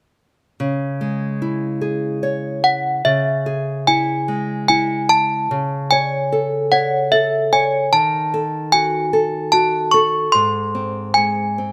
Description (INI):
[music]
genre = children's music, lullaby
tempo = 74 BPM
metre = 3/4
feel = rubato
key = C# harmonic minor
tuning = A4 = 440 Hz
[part]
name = nylon-string guitar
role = accompaniment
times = 0.6-11.7 s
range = G#2 to C#5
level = -23 LUFS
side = equal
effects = none
[part]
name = desk bells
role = melody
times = 2.6-11.7 s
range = E5 to C#6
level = -19 LUFS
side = equal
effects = none
[sound]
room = light reverb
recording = close, detailed microphones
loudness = -18 LUFS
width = mono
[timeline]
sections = 0.6-3.0 A section; 3.0-11.7 B section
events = none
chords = 0.6 C#m; 5.5 F#madd9/C# (rootless); 7.9 D#dim; 10.3 G#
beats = | 0.60 1.42 2.23 | 3.05 3.87 4.69 | 5.51 6.32 7.13 | 7.94 8.74 9.53 | 10.34 11.15